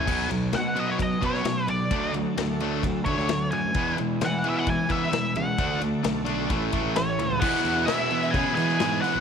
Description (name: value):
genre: classic rock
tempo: 131 BPM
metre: 4/4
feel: straight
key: E major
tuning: A4 = 440 Hz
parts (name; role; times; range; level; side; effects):
- octave-fuzz lead guitar; melody; 0.0-9.2 s; C#5 to G#5; -28 LUFS; equal; wah, distortion
- distorted electric guitar; riff; 0.0-9.2 s; A2 to E4; -29 LUFS; left 10 dB; overdrive
- sludgy distorted guitar; riff; 0.0-9.2 s; E2 to D4; -30 LUFS; right 12 dB; overdrive
- bright tonewheel organ; sustained chords; 0.1-9.2 s; A3 to C5; -39 LUFS; right 1 dB; none
- fuzz fingered electric bass; bass; 0.1-9.2 s; A1 to E3; -32 LUFS; right 1 dB; overdrive
- big rock drum kit; drums; 0.1-9.1 s; crash cymbal, kick drum, ride cymbal, snare drum; -31 LUFS; left 3 dB; none
- octave-fuzz lead guitar; second line; 7.0-9.2 s; C#4 to G#4; -32 LUFS; right 11 dB; distortion
- biting overdriven guitar; riff; 7.4-9.2 s; E2 to E3; -32 LUFS; equal; none
- tambourine; percussion; 7.5-9.2 s; none; -47 LUFS; right 15 dB; none
room: light reverb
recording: 1960s-style stereo with parts hard left and right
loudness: -22 LUFS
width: side -7 dB against mid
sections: 0.1-7.4 A section; 7.4-9.2 B section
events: none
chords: 0.1 Badd9; 1.9 D; 3.8 E6; 5.6 D; 6.5 A; 7.4 E